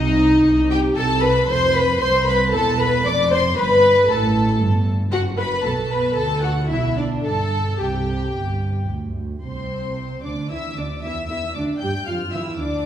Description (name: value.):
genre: quick classical-period movement for string orchestra.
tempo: 115 BPM.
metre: 4/4.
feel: straight.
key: C major.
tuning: A4 = 439 Hz.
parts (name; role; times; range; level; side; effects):
warm studio violin section; melody; 0.0-12.9 s; D5 to G6; -25 LUFS; left 3 dB; none.
warm studio violin section; second line; 0.0-12.9 s; D4 to G5; -22 LUFS; left 2 dB; none.
dark studio viola section; accompaniment; 0.0-12.9 s; C4 to D5; -23 LUFS; equal; none.
dark studio cello section; bass; 0.0-12.9 s; C2 to G3; -26 LUFS; right 2 dB; none.
warm studio double bass section; bass; 0.0-12.9 s; E1 to G2; -25 LUFS; right 2 dB; none.
room: wet recital hall reverb, RT60 1.6 s.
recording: heard from further back in the room.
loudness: -17 LUFS.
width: side -10 dB against mid.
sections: 0.0-9.4 A section; 9.4-12.9 B section.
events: none.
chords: 0.0 Cm; 1.0 C; 3.1 F69; 5.1 D/F#; 7.3 C5/G; 8.4 G5; 9.4 C; 11.5 Dmadd9.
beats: 0.45 | 0.96 1.49 2.01 2.53 | 3.05 3.57 4.09 4.61 | 5.13 5.65 6.18 6.71 | 7.26 7.80 8.35 8.90 | 9.44 9.97 10.50 11.03 | 11.55 12.07 12.59.